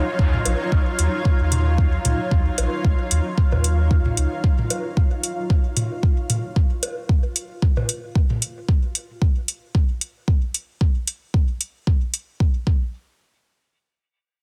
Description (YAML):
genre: dub techno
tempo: 113 BPM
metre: 4/4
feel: swing 55% on 16ths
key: Eb minor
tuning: A4 = 440 Hz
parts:
  - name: granular cloud pad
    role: sustained chords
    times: 0.0-4.4 s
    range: Gb3 to Db5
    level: -31 LUFS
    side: equal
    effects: built-in reverb, sidechain pumping
  - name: bubbling stepped-filter texture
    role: texture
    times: 0.0-8.7 s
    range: F4 to F5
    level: -35 LUFS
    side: equal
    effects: chorus, built-in reverb, sidechain pumping
  - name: soft dub sub bass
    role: bass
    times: 0.2-4.3 s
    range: Bb1 to Eb2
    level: -23 LUFS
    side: equal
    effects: sidechain pumping
  - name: electronic kick drum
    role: drums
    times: 0.2-12.8 s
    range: none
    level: -20 LUFS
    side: equal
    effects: none
  - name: electronic toms and bongos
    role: percussion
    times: 0.3-8.4 s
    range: none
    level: -29 LUFS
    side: equal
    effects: sidechain pumping on toms, sidechain pumping on perc
  - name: electronic hi-hat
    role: drums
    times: 0.5-12.3 s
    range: none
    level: -25 LUFS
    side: equal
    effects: none
room: digital ambience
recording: dense, heavily limited modern master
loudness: -21 LUFS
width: mono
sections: 0.0-12.9 A section; 12.9-14.4 B section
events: none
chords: 0.0 Ebm9; 4.4 N.C.